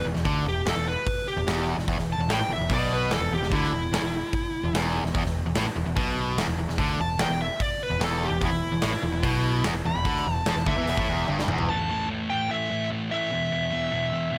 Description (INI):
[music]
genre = hard rock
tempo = 147 BPM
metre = 4/4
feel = straight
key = E minor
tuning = A4 = 440 Hz
[part]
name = smooth overdriven lead guitar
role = melody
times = 0.0-14.4 s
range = E4 to B5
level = -31 LUFS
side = equal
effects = slapback echo
[part]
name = distorted electric guitar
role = riff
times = 0.0-11.7 s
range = E2 to E3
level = -32 LUFS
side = equal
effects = overdrive
[part]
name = sludgy distorted guitar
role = riff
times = 0.0-14.4 s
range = E2 to A3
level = -32 LUFS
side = equal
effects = overdrive
[part]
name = growling fingered electric bass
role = bass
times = 0.0-11.7 s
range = E1 to E2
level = -33 LUFS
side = equal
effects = overdrive
[part]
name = huge arena drum kit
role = drums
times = 0.2-11.7 s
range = hi-hat, kick drum, snare drum, toms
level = -32 LUFS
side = equal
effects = none
[sound]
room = little or no reverb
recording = none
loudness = -26 LUFS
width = mono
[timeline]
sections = 0.0-11.7 A section; 11.7-14.4 B section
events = lead electric guitar solo 0.0-11.7; drum fill 11.3-11.7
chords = 0.0 E5; 11.7 A5; 13.3 E5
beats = | 0.25 0.66 1.06 1.47 | 1.88 2.29 2.70 3.10 | 3.51 3.92 4.33 4.74 | 5.15 5.55 5.96 6.37 | 6.78 7.19 7.60 8.01 | 8.42 8.83 9.24 9.64 | 10.05 10.46 10.87 11.28 | 11.68 12.09 12.50 12.90 | 13.31 13.71 14.12